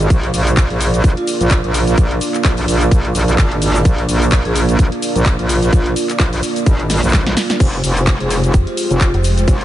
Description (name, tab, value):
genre	bass house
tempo	128 BPM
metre	4/4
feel	swing 56% on 16ths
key	unclear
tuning	A4 = 441 Hz
part	dark analog pad	sustained chords	0.0-9.6 s	Ab3 to D5	-21 LUFS	right 3 dB	chorus, sidechain pumping
part	metallic wobble bass	bass	0.0-9.6 s	F1 to Bb1	-16 LUFS	equal	chorus, sidechain pumping
part	house drum kit	drums	0.0-9.6 s	crash cymbal, handclaps, hi-hat, shaker, snare drum	-22 LUFS	left 1 dB	none
part	electronic kick drum	drums	0.1-9.6 s	none	-13 LUFS	equal	none
part	loose indie drum kit	drums	0.1-9.6 s	hi-hat, shaker, snare drum	-34 LUFS	left 2 dB	none
part	vibraphone with soft mallets	melody	0.7-9.1 s	F4 to Ab4	-26 LUFS	equal	diffuse ambient delay
part	metallic FM bass	bass	8.5-9.5 s	F1	-15 LUFS	equal	sidechain pumping
room	light reverb, small room ambience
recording	nothing above 10.4 kHz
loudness	-12 LUFS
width	side -13 dB against mid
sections	0.0-9.6 A section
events	drum fill 6.9-7.6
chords	0.1 Bb; 7.6 Fmadd9